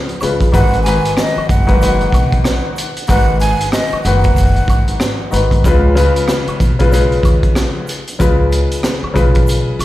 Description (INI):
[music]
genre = hip hop, boom-bap hip-hop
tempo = 94 BPM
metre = 4/4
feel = swing 60% on 16ths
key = G# dorian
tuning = A4 = 442 Hz
[part]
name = warm upright piano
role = accompaniment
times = 0.0-9.8 s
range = G#2 to B4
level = -17 LUFS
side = left 3 dB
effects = none
[part]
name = crunchy breakbeat drum kit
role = drums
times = 0.1-9.8 s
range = hi-hat, kick drum, rim click, snare drum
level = -16 LUFS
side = equal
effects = none
[part]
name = upright bass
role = bass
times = 0.2-9.8 s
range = F#1 to D#2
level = -16 LUFS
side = equal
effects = none
[part]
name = tube shaker and woodblock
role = percussion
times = 0.2-9.8 s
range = none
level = -29 LUFS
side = right 2 dB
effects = none
[part]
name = breathy mellow silver concert flute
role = melody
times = 0.6-5.1 s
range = D#5 to G#5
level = -21 LUFS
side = right 2 dB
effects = tape echo
[sound]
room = little or no reverb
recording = played on a big sound system in a bare room, stone room reverb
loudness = -11 LUFS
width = side -15 dB against mid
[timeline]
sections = 0.0-9.8 A section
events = break 9.5-9.8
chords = 0.0 C#7; 0.5 G#m7; 5.6 C#7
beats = | 0.54 1.18 1.82 2.45 | 3.09 3.73 4.37 5.01 | 5.64 6.28 6.92 7.56 | 8.20 8.84 9.47